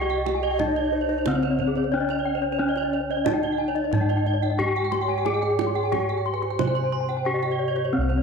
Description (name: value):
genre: Balinese gamelan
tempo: 90 BPM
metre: 4/4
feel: straight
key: C pelog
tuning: A4 = 440 Hz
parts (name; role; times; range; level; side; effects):
- gamelan-type bronze metallophone; melody; 0.0-8.2 s; C4 to C5; -26 LUFS; left 2 dB; tape echo
- breathy mellow xiao; second line; 0.0-8.0 s; C5 to Eb5-23c; -32 LUFS; right 8 dB; none
- gamelan-type bronze metallophone; arpeggios; 0.0-8.2 s; C5 to C6; -30 LUFS; right 9 dB; none
- gamelan-type bossed gongs; bass; 0.0-8.2 s; C2 to Ab4-20c; -28 LUFS; equal; none
- kendang; percussion; 0.1-8.2 s; none; -32 LUFS; right 11 dB; none
- gamelan-type bronze metallophone; arpeggios; 0.2-8.2 s; Ab4-20c to C6; -29 LUFS; left 10 dB; none
- gamelan-type bronze metallophone; accompaniment; 7.9-8.2 s; C3; -34 LUFS; right 7 dB; none
room: moderate echo chamber reverb, RT60 1.3 s, small room ambience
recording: 1960s-style stereo with parts hard left and right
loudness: -22 LUFS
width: side -5 dB against mid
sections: 0.0-8.2 A section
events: none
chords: none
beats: 0.60 1.26 1.93 | 2.60 3.26 3.93 4.60 | 5.26 5.93 6.60 7.26 | 7.93